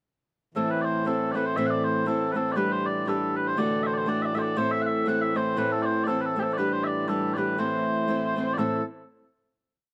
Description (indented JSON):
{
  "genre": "celtic folk, Celtic polka",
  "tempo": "120 BPM",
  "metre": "2/4",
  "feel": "swing 57% on 8ths",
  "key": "A dorian",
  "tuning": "A4 = 440 Hz",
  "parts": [
    { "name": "fingerpicked steel-string acoustic guitar", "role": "accompaniment", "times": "0.5-8.8 s", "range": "A2 to C5", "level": "-29 LUFS", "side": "equal", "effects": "slapback echo" },
    { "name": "hand-pumped harmonium", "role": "drone", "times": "0.5-8.6 s", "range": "A2 to E3", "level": "-36 LUFS", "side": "equal", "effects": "none" },
    { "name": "mellow small bagpipes", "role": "melody", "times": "0.6-8.8 s", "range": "G4 to F#5", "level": "-30 LUFS", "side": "equal", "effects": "none" }
  ],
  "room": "little or no reverb",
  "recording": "recorded outdoors, with no room sound",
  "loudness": "-26 LUFS",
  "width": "mono",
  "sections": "0.6-8.6 A section; 8.6-9.6 final chord",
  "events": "none",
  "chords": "0.6 Am; 2.6 G; 3.6 D; 4.6 Am; 6.6 G; 7.6 Am"
}